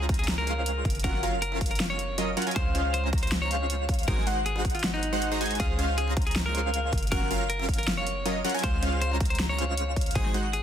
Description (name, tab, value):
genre	future bass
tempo	158 BPM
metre	4/4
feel	half-time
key	Db major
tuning	A4 = 440 Hz
part	clean electric guitar	melody	0.0-10.6 s	Eb4 to Db5	-33 LUFS	left 1 dB	sidechain pumping, tape echo
part	airy dreamy lead	arpeggios	0.0-10.5 s	Eb5 to Bb5	-34 LUFS	equal	chorus, phaser, sidechain pumping, tape echo
part	supersaw stab	riff	0.0-10.5 s	Gb3 to Bb5	-32 LUFS	right 1 dB	sidechain pumping, tape echo
part	warm 808-style bass	bass	0.0-10.6 s	Gb1 to Db2	-31 LUFS	equal	sidechain pumping
part	big-room dance drum kit	drums	0.1-10.6 s	hi-hat, snare drum	-33 LUFS	equal	overdrive
part	electronic kick drum	drums	0.1-10.2 s	none	-28 LUFS	equal	overdrive
room	little or no reverb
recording	dense, heavily limited modern master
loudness	-24 LUFS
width	side -9 dB against mid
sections	0.0-10.6 A section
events	none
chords	0.0 Dbmaj7; 0.9 Gbmaj7; 2.6 Dbmaj7; 4.1 Ab7; 5.6 Dbmaj7; 6.9 Gbmaj7; 8.6 Dbmaj7